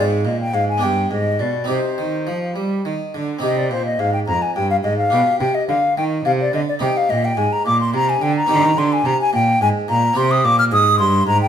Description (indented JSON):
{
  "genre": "classical, baroque-style sonata movement with continuo",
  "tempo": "71 BPM (dotted quarters)",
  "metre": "6/8",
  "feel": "straight",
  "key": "C minor",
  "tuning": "A4 = 440 Hz",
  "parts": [
    { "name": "bright wooden flute", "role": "melody", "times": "0.0-11.5 s", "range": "C5 to F6", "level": "-18 LUFS", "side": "left 2 dB", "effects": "none" },
    { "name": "harpsichord", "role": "accompaniment", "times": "0.0-11.5 s", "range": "F2 to C5", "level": "-23 LUFS", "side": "right 1 dB", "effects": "none" },
    { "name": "warm cello", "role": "bass", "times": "0.0-11.5 s", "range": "F2 to G3", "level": "-21 LUFS", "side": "right 2 dB", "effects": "none" }
  ],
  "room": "wet stone room reverb, RT60 1.0 s",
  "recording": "minimal, uncompressed stereo recording",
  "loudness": "-16 LUFS",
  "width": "side -9 dB against mid",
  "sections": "0.0-3.4 A section; 3.4-11.5 B section",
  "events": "none",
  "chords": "0.0 Fm/Ab; 0.8 G; 1.7 Cm; 5.1 G/B; 6.8 Cm; 10.2 C5"
}